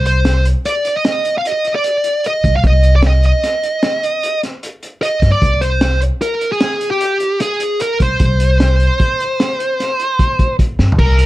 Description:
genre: progressive instrumental, band music in an uneven meter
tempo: 151 BPM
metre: 7/4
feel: straight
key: C minor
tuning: A4 = 438 Hz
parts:
  - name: high-gain lead guitar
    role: melody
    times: 0.0-11.3 s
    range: G4 to F5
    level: -16 LUFS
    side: right 1 dB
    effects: distortion
  - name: upright bass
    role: bass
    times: 0.0-11.3 s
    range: C2 to G2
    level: -12 LUFS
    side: equal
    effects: none
  - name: crunchy breakbeat drum kit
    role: drums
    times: 0.1-11.3 s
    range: crash cymbal, hi-hat, kick drum, snare drum, toms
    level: -18 LUFS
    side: equal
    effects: none
room: light reverb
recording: dark, warm production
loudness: -12 LUFS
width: side -16 dB against mid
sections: 0.0-11.0 A section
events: drum fill 10.8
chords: 0.0 Cm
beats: 0.25 0.65 1.05 1.45 1.84 2.24 | 2.64 3.04 3.43 3.83 4.23 4.62 5.02 | 5.42 5.82 6.21 6.61 7.01 7.41 7.80 | 8.20 8.60 9.00 9.39 9.79 10.19 10.59 | 10.99

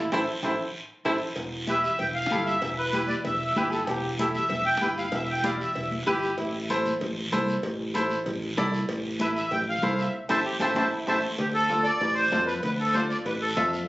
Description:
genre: latin, cumbia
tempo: 192 BPM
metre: 4/4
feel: straight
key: A minor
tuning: A4 = 439 Hz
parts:
  - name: bright trombone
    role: second line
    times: 0.0-1.1, 3.6-6.6, 10.5-11.4 s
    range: A3 to A4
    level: -31 LUFS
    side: right 1 dB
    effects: none
  - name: bright upright piano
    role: accompaniment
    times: 0.0-13.8 s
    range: E4 to E5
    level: -28 LUFS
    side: equal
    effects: none
  - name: fingered electric bass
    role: bass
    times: 0.0-13.8 s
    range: E1 to F2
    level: -32 LUFS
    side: equal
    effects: none
  - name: congas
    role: percussion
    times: 0.1-13.7 s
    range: none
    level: -35 LUFS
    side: left 1 dB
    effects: none
  - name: guiro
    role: percussion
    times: 0.1-13.9 s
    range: none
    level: -38 LUFS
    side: equal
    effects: none
  - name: timbales and cowbell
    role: percussion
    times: 0.1-13.4 s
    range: none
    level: -37 LUFS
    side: right 1 dB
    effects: none
  - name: accordion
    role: melody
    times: 1.7-5.9, 9.2-13.7 s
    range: G4 to A5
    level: -26 LUFS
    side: equal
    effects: light tremolo tuning
room: moderate studio reverb, RT60 0.8 s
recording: recorded on a phone in the room, club reverb, nothing above 7.8 kHz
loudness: -24 LUFS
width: side -18 dB against mid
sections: 0.0-1.4 A section; 1.4-11.4 B section; 11.4-13.9 C section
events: trombone solo 0.0-1.4; band accent 0.1-1.4, 10.1-11.4; drum fill 0.7-1.4; upright piano fill 0.7-1.4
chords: 0.0 Am; 1.4 Em; 6.4 Am; 11.4 Dm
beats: | 0.12 0.43 0.75 1.06 | 1.37 1.69 2.00 2.31 | 2.63 2.94 3.25 3.56 | 3.88 4.19 4.50 4.82 | 5.13 5.44 5.76 6.07 | 6.38 6.70 7.01 7.32 | 7.64 7.95 8.26 8.57 | 8.89 9.20 9.51 9.83 | 10.14 10.45 10.77 11.08 | 11.39 11.70 12.02 12.33 | 12.64 12.95 13.27 13.58

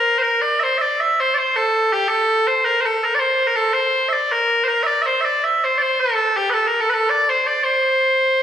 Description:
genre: celtic folk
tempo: 108 BPM (dotted quarters)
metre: 6/8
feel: straight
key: C mixolydian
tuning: A4 = 440 Hz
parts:
  - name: loud bright bagpipes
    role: solo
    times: 0.0-8.4 s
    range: G4 to E5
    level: -16 LUFS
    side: equal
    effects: none
room: wet recital hall reverb, RT60 1.7 s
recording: recorded in a church or concert hall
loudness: -16 LUFS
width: side -9 dB against mid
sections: 0.0-8.4 A section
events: none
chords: none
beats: 0.42 | 0.98 1.53 | 2.09 2.65 | 3.20 3.76 | 4.32 4.87 | 5.43 5.98 | 6.54 7.09 | 7.65 8.20

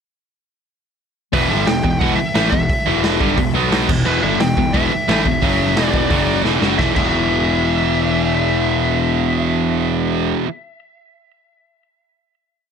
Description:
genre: punk rock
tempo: 176 BPM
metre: 4/4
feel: straight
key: E minor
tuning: A4 = 444 Hz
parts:
  - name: high-gain lead guitar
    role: melody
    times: 1.3-10.3 s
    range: B4 to G5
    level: -22 LUFS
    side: equal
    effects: distortion, ping-pong delay
  - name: distorted electric guitar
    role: riff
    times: 1.3-10.5 s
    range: E2 to B3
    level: -21 LUFS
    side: left 14 dB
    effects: distortion
  - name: tight distorted guitar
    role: riff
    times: 1.3-10.5 s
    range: E2 to B3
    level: -20 LUFS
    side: right 15 dB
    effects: distortion
  - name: fuzz picked electric bass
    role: bass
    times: 1.3-10.3 s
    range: E1 to B1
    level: -22 LUFS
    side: equal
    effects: overdrive
  - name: raw garage drum kit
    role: drums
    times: 1.3-7.1 s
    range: crash cymbal, hi-hat, kick drum, snare drum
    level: -21 LUFS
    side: equal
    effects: none
room: little or no reverb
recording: none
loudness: -14 LUFS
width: side -6 dB against mid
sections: 1.3-6.8 riff; 6.8-9.5 final chord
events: drum fill 6.4-6.8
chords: 1.3 Em; 3.6 B5; 3.9 Em; 5.4 F#5; 5.8 E5; 6.1 F#5; 6.4 E5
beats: | 1.34 1.68 2.02 2.36 | 2.70 3.04 3.38 3.72 | 4.06 4.40 4.75 5.08 | 5.43 5.77 6.11 6.45 | 6.79 7.13 7.47 7.81 | 8.15 8.49 8.84 9.18

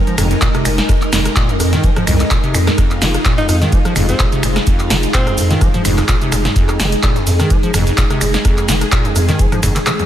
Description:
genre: acid house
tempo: 127 BPM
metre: 4/4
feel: swing 54% on 16ths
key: F minor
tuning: A4 = 440 Hz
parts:
  - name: string machine, full ensemble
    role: sustained chords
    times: 0.0-10.1 s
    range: Ab3 to Bb4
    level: -19 LUFS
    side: equal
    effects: ensemble chorus, sidechain pumping
  - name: acid bass, square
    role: riff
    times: 0.1-10.0 s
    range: F2 to F3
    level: -20 LUFS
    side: equal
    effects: tube saturation, analog delay
  - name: punchy analog drum machine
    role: drums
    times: 0.1-10.1 s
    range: finger snaps, handclaps, hi-hat, ride cymbal, rim click, shaker, snare drum, toms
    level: -18 LUFS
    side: equal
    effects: overdrive
  - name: saturated sub bass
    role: bass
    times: 0.2-9.8 s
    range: F1 to F2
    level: -17 LUFS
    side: equal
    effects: sidechain pumping
  - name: dusty soul sampler-style drum kit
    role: drums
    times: 0.2-10.0 s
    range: hi-hat, ride cymbal, snare drum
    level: -33 LUFS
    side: right 2 dB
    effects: none
  - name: electronic kick drum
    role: drums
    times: 0.4-9.7 s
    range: none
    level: -16 LUFS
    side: equal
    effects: none
  - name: edgy alto saxophone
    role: melody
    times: 3.4-5.5 s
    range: C4 to Eb4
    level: -24 LUFS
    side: equal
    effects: analog delay
room: light reverb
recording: none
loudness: -12 LUFS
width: side -11 dB against mid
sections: 0.0-10.1 A section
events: kick drops out 9.9; drum fill 9.9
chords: 0.0 Fm7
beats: 0.42 | 0.89 1.36 1.83 2.31 | 2.78 3.25 3.73 4.20 | 4.67 5.14 5.61 6.09 | 6.56 7.03 7.50 7.98 | 8.45 8.92 9.39 9.87

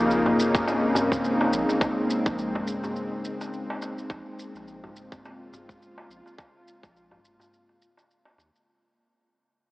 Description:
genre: organic downtempo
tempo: 105 BPM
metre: 4/4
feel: swing 57% on 16ths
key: Bb minor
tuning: A4 = 440 Hz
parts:
  - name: bowed-like drone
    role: sustained chords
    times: 0.0-8.6 s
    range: Db3 to F4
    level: -25 LUFS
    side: equal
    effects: built-in reverb, sidechain pumping
  - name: warm sub bass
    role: bass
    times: 0.0-8.5 s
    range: F1 to Eb2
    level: -39 LUFS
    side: equal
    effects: sidechain pumping
  - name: shaker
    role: drums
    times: 0.1-8.6 s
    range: none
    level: -38 LUFS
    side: equal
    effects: overdrive
  - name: darbuka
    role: percussion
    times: 0.3-8.5 s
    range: none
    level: -33 LUFS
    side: equal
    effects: none
  - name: electronic kick drum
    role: drums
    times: 0.5-6.9 s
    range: none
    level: -28 LUFS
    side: equal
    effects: none
room: wet huge ambient reverb, RT60 8.0 s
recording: dreamy mix soaked in reverb, AM radio sound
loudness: -23 LUFS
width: side -19 dB against mid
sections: 0.0-8.7 A section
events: fade-out 0.0-8.7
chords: 0.0 Bbm11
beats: 0.10 0.67 1.24 | 1.81 2.38 2.95 3.53 | 4.10 4.67 5.24 5.81 | 6.38 6.95 7.53 8.10

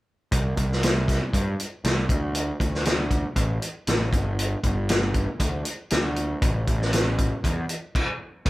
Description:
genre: psychedelic rock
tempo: 118 BPM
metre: 4/4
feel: straight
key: unclear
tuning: A4 = 441 Hz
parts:
  - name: fuzz picked electric bass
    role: bass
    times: 0.3-8.5 s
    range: G1 to G2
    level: -25 LUFS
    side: equal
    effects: overdrive
  - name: vintage drum kit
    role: drums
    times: 0.3-8.5 s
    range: crash cymbal, hi-hat, kick drum, snare drum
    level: -24 LUFS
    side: equal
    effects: none
room: light reverb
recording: band playing live in one room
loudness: -22 LUFS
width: side -18 dB against mid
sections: 0.3-8.5 A section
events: none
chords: none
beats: | 0.32 0.83 1.34 1.85 | 2.35 2.86 3.37 3.88 | 4.39 4.90 5.41 5.92 | 6.42 6.93 7.44 7.95 | 8.46

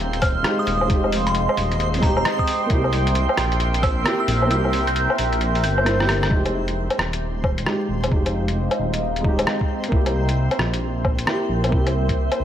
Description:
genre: future garage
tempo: 133 BPM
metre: 4/4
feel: swing 63% on 16ths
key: F minor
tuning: A4 = 438 Hz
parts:
  - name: felt-muted upright piano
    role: accompaniment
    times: 0.0-12.4 s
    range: Ab3 to C5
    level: -26 LUFS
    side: right 1 dB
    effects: sidechain pumping, low-pass filter, ping-pong delay
  - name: deep dark ambient pad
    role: sustained chords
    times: 0.0-12.4 s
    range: Ab3 to C6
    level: -27 LUFS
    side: right 1 dB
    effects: chorus, built-in reverb, vintage 12-bit sampler grit, sidechain pumping
  - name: dark detuned saw bass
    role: bass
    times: 0.0-12.4 s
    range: Eb1 to C2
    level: -23 LUFS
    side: equal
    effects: sidechain pumping
  - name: backwards swelling texture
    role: texture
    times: 0.0-12.4 s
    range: C4 to C5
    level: -32 LUFS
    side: equal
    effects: built-in reverb
  - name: lo-fi sampler-style drum kit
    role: drums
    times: 0.1-12.4 s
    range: hi-hat, rim click, woodblock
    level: -25 LUFS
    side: left 1 dB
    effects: small room ambience
  - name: glassy synth bell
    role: melody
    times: 0.2-6.3 s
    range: Bb5 to G6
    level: -26 LUFS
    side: right 1 dB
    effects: chorus, vintage 12-bit sampler grit, tape echo
  - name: electronic kick drum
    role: drums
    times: 0.2-12.2 s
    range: none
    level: -21 LUFS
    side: equal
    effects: small room ambience
room: moderate lush hall reverb, RT60 2.0 s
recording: vinyl crackle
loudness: -18 LUFS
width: side -10 dB against mid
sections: 0.0-6.3 A section; 6.3-12.4 B section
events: kick drops out 4.5-6.3; drum fill 5.9-6.3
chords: 0.0 Fm7; 2.7 C7; 6.3 Fm7; 9.9 C7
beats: 0.45 | 0.90 1.35 1.80 2.25 | 2.70 3.15 3.60 4.05 | 4.51 4.96 5.41 5.86 | 6.31 6.76 7.21 7.66 | 8.12 8.57 9.02 9.47 | 9.92 10.37 10.82 11.27 | 11.72 12.18

